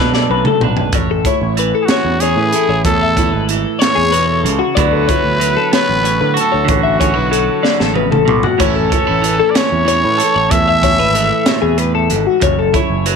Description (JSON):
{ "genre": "math rock and midwest emo", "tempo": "63 BPM (dotted quarters)", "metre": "6/8", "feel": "straight", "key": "A major", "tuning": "A4 = 440 Hz", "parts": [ { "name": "growling trumpet", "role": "melody", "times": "0.0-12.1 s", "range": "F#4 to E5", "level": "-17 LUFS", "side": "equal", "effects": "tape echo" }, { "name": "clean electric guitar", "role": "accompaniment", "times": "0.0-13.2 s", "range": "F#2 to A4", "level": "-19 LUFS", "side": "right 16 dB", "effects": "none" }, { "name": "twelve-string electric guitar", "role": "arpeggios", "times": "0.0-13.2 s", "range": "F#4 to E5", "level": "-17 LUFS", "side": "left 12 dB", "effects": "analog chorus" }, { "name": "growling fingered electric bass", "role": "bass", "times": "0.0-13.2 s", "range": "F#1 to D3", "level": "-19 LUFS", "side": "right 1 dB", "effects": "overdrive" }, { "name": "crisp fusion drum kit", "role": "drums", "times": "0.1-13.2 s", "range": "hi-hat, kick drum, snare drum, splash cymbal, toms", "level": "-18 LUFS", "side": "right 1 dB", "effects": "none" } ], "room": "light reverb, studio reverb", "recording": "1960s-style stereo with parts hard left and right", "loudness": "-11 LUFS", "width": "side -6 dB against mid", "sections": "0.9-13.2 A section", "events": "drum fill 0.0-0.9, 7.7-8.6", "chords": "0.0 Bm7; 0.9 Amaj7; 4.8 D69; 8.6 Amaj7; 12.4 F#m7", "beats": "| 0.94 1.90 | 2.86 3.82 | 4.78 5.74 | 6.70 7.65 | 8.61 9.57 | 10.53 11.48 | 12.44" }